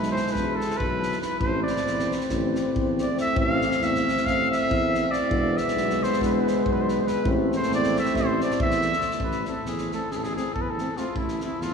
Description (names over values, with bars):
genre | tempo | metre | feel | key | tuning
balkan folk, Balkan brass band | 276 BPM (eighths) | 9/8 | straight | A harmonic minor | A4 = 440 Hz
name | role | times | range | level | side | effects
warm trumpet | melody | 0.0-11.7 s | E4 to F5 | -27 LUFS | equal | none
clear trombone | accompaniment | 0.0-11.5 s | G#3 to A3 | -31 LUFS | right 5 dB | none
warm euphonium | accompaniment | 0.0-11.5 s | B3 to E4 | -29 LUFS | left 4 dB | none
mellow tuba | bass | 0.0-11.7 s | E1 to E2 | -28 LUFS | equal | none
loose indie drum kit | percussion | 0.0-11.7 s | kick drum, snare drum | -32 LUFS | equal | none
room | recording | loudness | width
wet cathedral reverb, RT60 6.0 s | recorded in a church or concert hall, studio reverb | -22 LUFS | side -6 dB against mid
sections
0.0-9.2 A section; 9.2-11.7 B section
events
trumpet solo 0.0-9.2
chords
0.0 E; 1.4 Am; 5.3 E; 7.3 Am